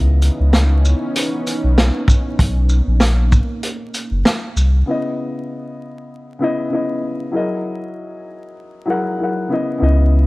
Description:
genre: hip hop, boom-bap hip-hop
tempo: 97 BPM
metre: 4/4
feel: swing 55% on 16ths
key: C# dorian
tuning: A4 = 441 Hz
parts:
  - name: dark concert grand piano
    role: accompaniment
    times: 0.0-10.3 s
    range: C#3 to F#5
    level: -21 LUFS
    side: left 2 dB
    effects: high-pass filter, low-pass filter
  - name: dark analog pad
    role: sustained chords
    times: 0.1-4.8 s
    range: E3 to D#4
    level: -25 LUFS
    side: right 1 dB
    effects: chorus, high-pass filter, low-pass filter
  - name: warm sub bass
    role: bass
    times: 0.0-4.8, 9.8-10.3 s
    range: F#1 to C#2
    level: -13 LUFS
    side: equal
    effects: none
  - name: vintage drum kit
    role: drums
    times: 0.2-4.7 s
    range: hi-hat, kick drum, shaker, snare drum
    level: -17 LUFS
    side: equal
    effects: none
room: small room reverb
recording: vinyl crackle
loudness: -15 LUFS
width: side -21 dB against mid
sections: 0.0-4.9 A section; 4.9-10.3 B section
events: break 0.0-4.9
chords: 0.0 C#m9; 2.4 Bmaj9; 4.9 C#m9; 7.3 F#13; 9.5 C#m9

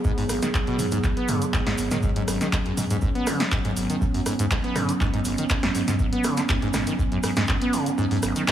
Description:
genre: acid house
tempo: 121 BPM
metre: 4/4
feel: straight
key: G# minor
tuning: A4 = 440 Hz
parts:
  - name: warbly tape-like pad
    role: sustained chords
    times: 0.0-8.5 s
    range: F#3 to G#4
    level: -27 LUFS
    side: right 2 dB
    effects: chorus, built-in reverb, sidechain pumping
  - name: acid bass, saw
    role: riff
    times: 0.0-8.5 s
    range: G#1 to B3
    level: -26 LUFS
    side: equal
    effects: overdrive, lush chorus, digital delay
  - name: electronic kick drum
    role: drums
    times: 0.0-7.6 s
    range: none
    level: -26 LUFS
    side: equal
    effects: none
  - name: cabasa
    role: percussion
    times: 0.0-8.5 s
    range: none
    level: -37 LUFS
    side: right 4 dB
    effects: none
  - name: punchy analog drum machine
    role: drums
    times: 0.2-8.5 s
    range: handclaps, hi-hat, rim click, snare drum, toms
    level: -28 LUFS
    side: equal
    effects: overdrive
room: light reverb, digital ambience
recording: small room ambience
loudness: -21 LUFS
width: side -10 dB against mid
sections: 0.0-8.5 A section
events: kick drops out 8.0-8.5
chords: 0.0 G#m7

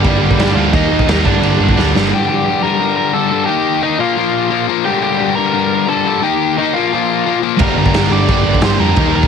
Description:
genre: punk rock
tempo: 175 BPM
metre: 4/4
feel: straight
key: G minor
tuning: A4 = 440 Hz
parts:
  - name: biting lead guitar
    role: melody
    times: 0.0-9.3 s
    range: F3 to D6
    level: -18 LUFS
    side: right 4 dB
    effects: overdrive, ping-pong delay
  - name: distorted electric guitar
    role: riff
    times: 0.0-9.3 s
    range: G2 to Eb4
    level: -16 LUFS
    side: left 16 dB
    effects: distortion
  - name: overdriven electric guitar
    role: riff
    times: 0.0-2.1, 7.6-9.3 s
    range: G2 to G4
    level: -18 LUFS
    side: right 15 dB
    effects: none
  - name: sludgy distorted guitar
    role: riff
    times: 0.0-2.1, 7.6-9.3 s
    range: G2 to Eb4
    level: -20 LUFS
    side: equal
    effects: overdrive
  - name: overdriven picked electric bass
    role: bass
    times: 0.0-2.1, 7.6-9.3 s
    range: G1 to F2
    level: -17 LUFS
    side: equal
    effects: none
  - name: raw garage drum kit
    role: drums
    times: 0.0-2.0, 7.6-9.3 s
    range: crash cymbal, kick drum, snare drum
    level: -16 LUFS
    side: right 1 dB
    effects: none
room: little or no reverb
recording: heavily compressed radio sound, multiband compression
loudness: -12 LUFS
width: side -6 dB against mid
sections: 0.0-2.1 A section; 2.1-9.3 A section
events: drum fill 1.8-2.1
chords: 0.0 Gm; 0.7 Eb; 1.2 Gm; 3.5 Eb; 4.0 Bb5; 4.9 Gm; 6.2 Eb; 6.7 Bb5; 7.6 Gm

